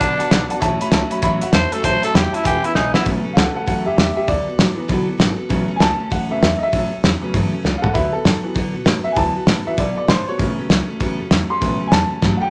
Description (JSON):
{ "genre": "rockabilly", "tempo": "197 BPM", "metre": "4/4", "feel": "swing 62% on 8ths", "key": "A mixolydian", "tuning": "A4 = 441 Hz", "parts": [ { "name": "growling tenor saxophone", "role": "melody", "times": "0.0-3.1 s", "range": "D4 to C5", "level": "-22 LUFS", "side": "equal", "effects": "none" }, { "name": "clear upright piano", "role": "accompaniment", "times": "0.0-12.5 s", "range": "C#3 to C6", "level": "-24 LUFS", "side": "equal", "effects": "none" }, { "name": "picked steel-string acoustic guitar", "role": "accompaniment", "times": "0.0-12.5 s", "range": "A2 to A4", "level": "-27 LUFS", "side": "equal", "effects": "none" }, { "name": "upright bass", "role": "bass", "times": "0.0-12.4 s", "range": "E1 to B2", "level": "-29 LUFS", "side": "equal", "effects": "none" }, { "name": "cloth-damped thuddy drum kit", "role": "drums", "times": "0.0-12.3 s", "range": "hi-hat, kick drum, snare drum, toms", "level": "-20 LUFS", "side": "equal", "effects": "none" } ], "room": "moderate large studio reverb, RT60 0.8 s", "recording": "none", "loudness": "-18 LUFS", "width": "mono", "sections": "0.0-3.1 A section; 3.1-12.5 B section", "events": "drum fill 2.8-3.1, 7.6-7.9, 12.2; upright piano solo 3.1-12.5", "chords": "0.0 D6; 0.6 A6; 2.4 E6; 3.1 A6; 4.3 D6; 5.5 A6; 7.9 D6; 10.4 A6", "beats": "0.00 0.31 | 0.61 0.92 1.23 1.53 | 1.83 2.14 2.45 2.75 | 3.06 3.36 3.67 3.97 | 4.28 4.58 4.89 5.19 | 5.50 5.80 6.11 6.42 | 6.72 7.03 7.33 7.64 | 7.94 8.25 8.55 8.86 | 9.16 9.47 9.77 10.08 | 10.38 10.69 10.99 11.30 | 11.60 11.91 12.21" }